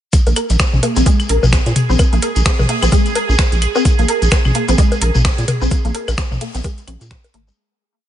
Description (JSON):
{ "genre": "minimal techno", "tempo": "129 BPM", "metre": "4/4", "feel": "swing 58% on 16ths", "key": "unclear", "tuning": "A4 = 440 Hz", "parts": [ { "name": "electronic kick drum", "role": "drums", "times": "0.1-7.2 s", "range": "none", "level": "-15 LUFS", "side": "equal", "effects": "overdrive" }, { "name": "garage drum kit", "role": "drums", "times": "0.1-7.4 s", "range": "finger snaps, hi-hat", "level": "-22 LUFS", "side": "right 1 dB", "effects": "overdrive" }, { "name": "open jazz drum kit", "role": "drums", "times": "0.1-7.5 s", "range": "hi-hat, shaker, snare drum", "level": "-30 LUFS", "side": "left 1 dB", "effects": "sidechain pumping on hats, high-pass filter on hats, high-pass filter on snare, sidechain pumping on perc, high-pass filter on perc, high-pass filter on room" }, { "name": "shekere", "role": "percussion", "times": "0.1-7.6 s", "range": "none", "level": "-29 LUFS", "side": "left 4 dB", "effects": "none" }, { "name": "pulsing gated texture", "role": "texture", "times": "0.7-7.6 s", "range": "Ab4", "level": "-24 LUFS", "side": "right 6 dB", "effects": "chorus, built-in reverb, sidechain pumping" }, { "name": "resonant blip pluck", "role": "riff", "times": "0.3-7.5 s", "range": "Ab3 to Bb4", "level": "-21 LUFS", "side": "left 1 dB", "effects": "ensemble chorus, sidechain pumping, dub echo" }, { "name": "rubbery square bass", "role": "bass", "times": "0.3-7.5 s", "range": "Ab1 to Bb2", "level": "-16 LUFS", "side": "equal", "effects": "sidechain pumping" }, { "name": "electronic bongos, claves and toms", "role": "percussion", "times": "0.3-7.3 s", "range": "none", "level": "-20 LUFS", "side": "left 2 dB", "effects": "ping-pong delay" } ], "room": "small room reverb", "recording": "nothing above 10.5 kHz", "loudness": "-12 LUFS", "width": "side -11 dB against mid", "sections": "0.1-7.6 groove", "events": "fade-out 5.1-7.6", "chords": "none" }